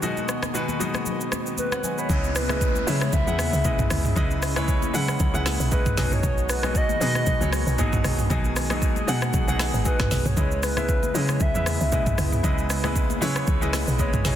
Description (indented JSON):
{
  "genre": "amapiano",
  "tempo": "116 BPM",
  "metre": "4/4",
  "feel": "swing 55% on 16ths",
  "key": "C# minor",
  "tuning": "A4 = 440 Hz",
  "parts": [
    { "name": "clear concert grand piano", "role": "accompaniment", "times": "0.0-14.4 s", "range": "B2 to B5", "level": "-28 LUFS", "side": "equal", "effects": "none" },
    { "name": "lush unison pad", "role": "sustained chords", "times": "0.0-14.4 s", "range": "C#3 to G#4", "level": "-32 LUFS", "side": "left 1 dB", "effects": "chorus" },
    { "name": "deep house drum kit", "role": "drums", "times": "0.0-14.4 s", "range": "hi-hat, kick drum, rim click, shaker, snare drum, toms", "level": "-25 LUFS", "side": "equal", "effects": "soft clipping on snare" },
    { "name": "congas", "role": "percussion", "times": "0.0-14.2 s", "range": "none", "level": "-34 LUFS", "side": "left 9 dB", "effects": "none" },
    { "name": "swell and downlifter", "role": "sound effects", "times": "1.1-6.2 s", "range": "none", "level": "-36 LUFS", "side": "right 1 dB", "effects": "none" },
    { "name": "hollow clarinet-like synth lead", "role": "melody", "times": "1.6-14.4 s", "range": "B4 to E5", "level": "-29 LUFS", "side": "equal", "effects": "chorus, ping-pong delay" },
    { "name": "woody log drum bass", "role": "bass", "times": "2.1-14.4 s", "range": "G#1 to C#3", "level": "-26 LUFS", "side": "equal", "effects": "none" }
  ],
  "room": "little or no reverb",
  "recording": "dense, heavily limited modern master",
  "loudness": "-21 LUFS",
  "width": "side -11 dB against mid",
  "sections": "0.0-2.1 A section; 2.1-14.4 B section",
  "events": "swell 1.1-2.1",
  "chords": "0.0 G#m7/B; 2.1 C#m7; 6.0 G#m7; 10.4 C#m7"
}